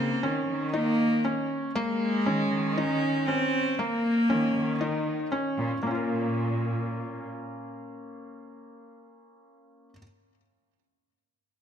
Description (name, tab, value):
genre	piano and strings electronica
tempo	118 BPM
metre	4/4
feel	straight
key	Bb minor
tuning	A4 = 436 Hz
part	warm cello	melody	0.0-5.3 s	Ab3 to Db4	-27 LUFS	equal	ping-pong delay
part	felt-muted upright piano	riff	0.0-10.0 s	Bb3 to Bb4	-29 LUFS	left 1 dB	ping-pong delay
part	warm studio cello section	bass	0.0-7.3 s	Bb2 to Eb3	-33 LUFS	right 1 dB	none
room	moderate concert hall reverb, RT60 2.4 s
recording	none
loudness	-25 LUFS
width	side -8 dB against mid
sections	0.0-5.8 A section; 5.8-9.9 B section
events	drop 0.0-5.8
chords	0.0 Eb5; 5.8 Bbm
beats	0.23 0.74 1.25 | 1.76 2.27 2.78 3.28 | 3.79 4.30 4.81 5.32 | 5.83 6.33 6.84 7.35 | 7.86 8.37 8.88 9.39